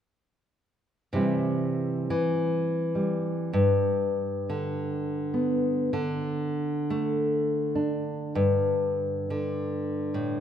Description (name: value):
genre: folk, solo fingerstyle acoustic guitar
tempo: 100 BPM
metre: 4/4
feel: swing 60% on 8ths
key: C major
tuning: A4 = 443 Hz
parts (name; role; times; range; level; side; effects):
- nylon-string guitar; solo; 1.1-10.4 s; G2 to E4; -25 LUFS; equal; none
room: moderate scoring stage reverb, RT60 1.9 s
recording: recorded in a church or concert hall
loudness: -25 LUFS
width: side -9 dB against mid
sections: 1.1-10.4 A section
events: none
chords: 1.1 C; 3.5 G; 5.9 D5; 8.3 G5